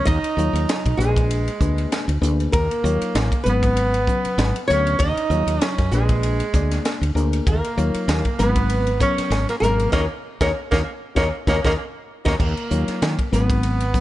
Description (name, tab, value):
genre	electric jazz fusion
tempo	97 BPM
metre	4/4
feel	swing 55% on 16ths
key	Eb minor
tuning	A4 = 441 Hz
part	flamenco guitar	melody	0.0-14.0 s	Ab4 to Eb5	-25 LUFS	left 1 dB	slapback echo
part	breathy tenor saxophone	second line	0.0-14.0 s	Ab3 to Eb4	-26 LUFS	right 4 dB	slapback echo
part	bright reed electric piano	accompaniment	0.0-14.0 s	Cb3 to D5	-27 LUFS	left 4 dB	overdrive
part	woody fretless electric bass	bass	0.1-13.9 s	Ab1 to Eb3	-21 LUFS	equal	none
part	crisp fusion drum kit	drums	0.1-14.0 s	crash cymbal, hi-hat, kick drum, ride cymbal, snare drum	-24 LUFS	equal	none
room	little or no reverb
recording	nothing above 10.6 kHz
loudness	-18 LUFS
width	side -15 dB against mid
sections	0.0-12.4 A section; 12.4-14.0 A section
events	band accent 9.9-12.4; drum fill 12.1-12.4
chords	0.1 Ebm9; 1.0 Bb7b9; 2.5 Ebm9; 3.5 Abm11; 5.0 Ebm9; 5.9 Bb7b9; 7.5 Ebm9; 8.4 Abm11; 9.9 Ebm7; 12.4 Ebm9; 13.3 Abm11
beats	| 0.07 0.69 1.30 1.92 | 2.54 3.15 3.77 4.38 | 5.00 5.62 6.23 6.85 | 7.46 8.08 8.70 9.31 | 9.93 10.55 11.16 11.78 | 12.40 13.02 13.63